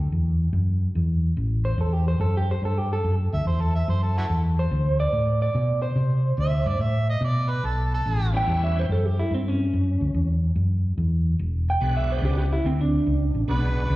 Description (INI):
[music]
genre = electric blues shuffle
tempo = 144 BPM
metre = 4/4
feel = swing 67% on 8ths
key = unclear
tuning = A4 = 441 Hz
[part]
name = hollow-body short-scale fingered electric bass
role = bass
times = 0.0-14.0 s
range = E1 to C3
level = -22 LUFS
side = equal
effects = none
[part]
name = electric guitar through a small old amp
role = melody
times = 1.6-13.6 s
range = C4 to G5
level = -27 LUFS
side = right 1 dB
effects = slapback echo
[part]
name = overdriven harmonica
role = second line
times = 3.3-8.3, 13.5-14.0 s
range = E4 to E5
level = -30 LUFS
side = right 2 dB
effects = slapback echo
[part]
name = bright tonewheel organ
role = accompaniment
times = 8.3-8.9, 11.8-14.0 s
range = G3 to F#4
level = -33 LUFS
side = right 2 dB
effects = slow rotary speaker, overdrive, chorus vibrato, slapback echo
[sound]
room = little or no reverb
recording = live gig heard through the venue's PA, recital hall reverb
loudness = -21 LUFS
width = side -17 dB against mid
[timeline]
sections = 0.0-14.0 A section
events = none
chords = 0.0 A5; 4.7 D5; 8.1 A7 (rootless); 11.4 E7